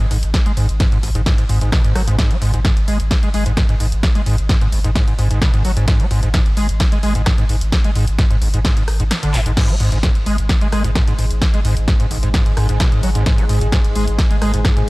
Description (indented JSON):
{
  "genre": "driving peak-time techno",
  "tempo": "130 BPM",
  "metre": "4/4",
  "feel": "straight",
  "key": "unclear",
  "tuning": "A4 = 440 Hz",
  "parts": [
    { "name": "overdriven acid bass", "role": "riff", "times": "0.0-14.8 s", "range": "G#1 to G#3", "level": "-20 LUFS", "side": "equal", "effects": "distortion, ensemble chorus, sidechain pumping, tape echo" },
    { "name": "saturated sub bass", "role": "bass", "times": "0.0-14.9 s", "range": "G#1", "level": "-19 LUFS", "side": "equal", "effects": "overdrive, sidechain pumping, low-pass filter" },
    { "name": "punchy analog drum machine", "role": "drums", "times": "0.0-14.9 s", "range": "crash cymbal, handclaps, hi-hat, ride cymbal, rim click, snare drum", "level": "-24 LUFS", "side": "equal", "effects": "sidechain pumping on hats, sidechain pumping on cymbals" },
    { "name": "electronic kick drum", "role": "drums", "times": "0.3-14.7 s", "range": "none", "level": "-16 LUFS", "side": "equal", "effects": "none" },
    { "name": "deep dark ambient pad", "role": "drone", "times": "10.3-14.9 s", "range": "G#2 to G#3", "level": "-28 LUFS", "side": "left 1 dB", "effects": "chorus, built-in reverb, sidechain pumping" }
  ],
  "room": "little or no reverb",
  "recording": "dry, gritty hardware recording, transformer saturation",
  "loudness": "-14 LUFS",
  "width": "side -22 dB against mid",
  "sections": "0.0-9.6 A section; 9.6-14.9 A section",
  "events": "drop 0.0-9.6, 9.6-14.9; kick drops out 9.1-9.6; drum fill 9.3",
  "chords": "none",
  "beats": "| 0.34 0.80 1.26 1.72 | 2.19 2.65 3.11 3.57 | 4.03 4.49 4.96 5.42 | 5.88 6.34 6.80 7.26 | 7.72 8.19 8.65 9.11 | 9.57 10.03 10.49 10.96 | 11.42 11.88 12.34 12.80 | 13.26 13.72 14.19 14.65"
}